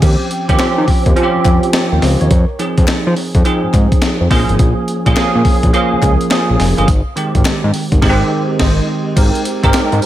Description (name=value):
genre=R&B, new jack swing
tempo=105 BPM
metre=4/4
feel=swing 64% on 16ths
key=unclear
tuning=A4 = 439 Hz
part: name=bell-like tine electric piano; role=accompaniment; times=0.0-10.1 s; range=Eb3 to F5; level=-15 LUFS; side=right 2 dB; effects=ensemble chorus
part: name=fat analog bass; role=bass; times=0.0-10.0 s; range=F1 to F3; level=-15 LUFS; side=equal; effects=none
part: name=breakbeat sampler-style drum kit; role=drums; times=0.0-10.1 s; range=crash cymbal, hi-hat, kick drum, snare drum, tambourine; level=-14 LUFS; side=equal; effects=gated reverb
part: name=group handclap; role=percussion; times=0.6-9.9 s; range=none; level=-29 LUFS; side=left 8 dB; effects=none
room=little or no reverb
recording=none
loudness=-11 LUFS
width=side -13 dB against mid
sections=0.0-9.2 A section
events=band accent 8.0-9.2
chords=0.0 Eb13; 2.3 Fm7; 4.3 Bbm7; 6.9 Abmaj7; 9.2 Abmaj9